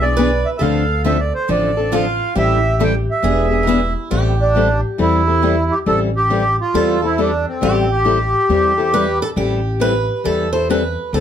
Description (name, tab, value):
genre	acoustic string swing (jazz manouche)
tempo	137 BPM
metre	4/4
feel	swing 64% on 8ths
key	A minor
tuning	A4 = 439 Hz
part	accordion	melody	0.0-9.2 s	C4 to G5	-18 LUFS	right 2 dB	none
part	picked swing-style acoustic guitar	second line	0.0-11.2 s	D#4 to C5	-23 LUFS	right 1 dB	none
part	picked steel-string acoustic guitar	accompaniment	0.0-11.2 s	D3 to A4	-20 LUFS	left 5 dB	none
part	upright bass	bass	0.0-11.2 s	E1 to E2	-20 LUFS	equal	none
part	picked steel-string acoustic guitar	accompaniment	0.2-3.8 s	D3 to B4	-25 LUFS	right 6 dB	none
room	light reverb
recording	none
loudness	-14 LUFS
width	side -9 dB against mid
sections	0.0-4.1 A section; 4.1-11.2 A section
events	none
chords	0.0 E7; 0.6 Dm7; 2.4 Am7; 3.2 E7; 4.1 Am7